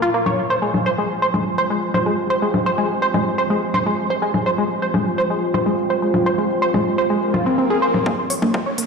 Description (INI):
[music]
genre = melodic techno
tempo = 125 BPM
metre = 4/4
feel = straight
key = unclear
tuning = A4 = 440 Hz
[part]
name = deep dark ambient pad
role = sustained chords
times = 0.0-8.9 s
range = Bb3 to G5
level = -24 LUFS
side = right 2 dB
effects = chorus, built-in reverb, sidechain pumping
[part]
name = tight sequenced synth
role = arpeggios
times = 0.0-8.9 s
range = Ab3 to Db5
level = -19 LUFS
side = equal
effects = chorus, sidechain pumping, dub echo
[part]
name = electronic shaker, congas and hi-hat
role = drums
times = 0.0-8.9 s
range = none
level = -25 LUFS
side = left 2 dB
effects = sidechain pumping on cymbals, high-pass filter on cymbals, low-pass filter on cymbals, sidechain pumping on perc, high-pass filter on perc, low-pass filter on perc, sidechain pumping on hats, high-pass filter on hats, low-pass filter on hats
[part]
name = swell and riser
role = sound effects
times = 7.3-8.9 s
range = none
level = -26 LUFS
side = left 1 dB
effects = none
[part]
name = electronic kick drum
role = drums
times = 8.1-8.6 s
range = none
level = -24 LUFS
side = equal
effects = high-pass filter on kick
[sound]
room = wet concert hall reverb, RT60 2.5 s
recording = played on a big sound system in a bare room, large studio reverb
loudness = -17 LUFS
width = side -5 dB against mid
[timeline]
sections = 0.0-8.1 A section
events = filter sweep on ambient pad 0.0-8.1; swell 7.3-8.1; riser 8.1-8.9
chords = 0.4 Fm; 8.1 Bb5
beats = | 0.38 0.86 1.34 1.82 | 2.30 2.78 3.26 3.74 | 4.22 4.70 5.18 5.66 | 6.14 6.62 7.10 7.58 | 8.06 8.54